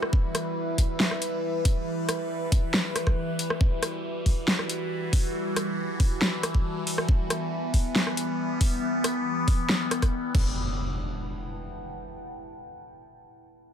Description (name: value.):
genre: heavy wobble dubstep.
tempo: 138 BPM.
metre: 4/4.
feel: half-time.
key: E minor.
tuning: A4 = 440 Hz.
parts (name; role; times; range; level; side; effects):
evolving wavetable pad; sustained chords; 0.0-10.5 s; E3 to B4; -30 LUFS; left 1 dB; phaser, built-in reverb, sidechain pumping.
dubstep drum kit; drums; 0.0-10.4 s; crash cymbal, hi-hat, rim click, snare drum; -27 LUFS; equal; small room ambience.
deep dark ambient pad; texture; 0.0-12.3 s; E4 to A5; -36 LUFS; right 2 dB; chorus, built-in reverb, sidechain pumping.
electronic kick drum; drums; 0.1-10.4 s; none; -23 LUFS; equal; small room ambience.
impact; sound effects; 10.3-12.1 s; none; -33 LUFS; equal; none.
room: light reverb.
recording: none.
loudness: -24 LUFS.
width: side -9 dB against mid.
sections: 0.0-10.6 A section; 10.6-12.3 B section.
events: fade-out on ambient pad 0.0-10.6.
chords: 0.0 Emadd9.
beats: | 0.13 0.56 1.00 1.43 | 1.87 2.30 2.74 3.17 | 3.61 4.04 4.48 4.91 | 5.35 5.78 6.22 6.65 | 7.09 7.52 7.96 8.39 | 8.82 9.26 9.70 10.13 | 10.56 11.00 11.43 11.87.